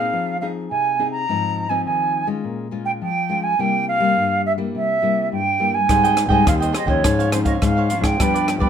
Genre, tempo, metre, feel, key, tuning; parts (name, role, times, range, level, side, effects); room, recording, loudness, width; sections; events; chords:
samba and choro; 104 BPM; 4/4; straight; A4 = 440 Hz
concert flute; melody; 0.0-8.7 s; C5 to Bb5; -20 LUFS; right 3 dB
nylon-string guitar; accompaniment; 0.0-8.7 s; G2 to Ab4; -24 LUFS; left 5 dB
cavaquinho; accompaniment; 5.9-8.7 s; F4 to G5; -25 LUFS; right 6 dB
fuzz fingered electric bass; bass; 5.9-8.7 s; Eb2 to Ab2; -21 LUFS; left 1 dB; overdrive
compact cocktail drum kit; drums; 5.9-8.7 s; hi-hat, kick drum, rim click; -22 LUFS; equal
light reverb; minimal, uncompressed stereo recording; -17 LUFS; side -8 dB against mid
0.0-8.7 A section
0.1 Fm7; 1.3 Ab6; 2.4 Bbm7; 3.6 C7; 5.9 Abmaj7; 7.0 Dbmaj7/Ab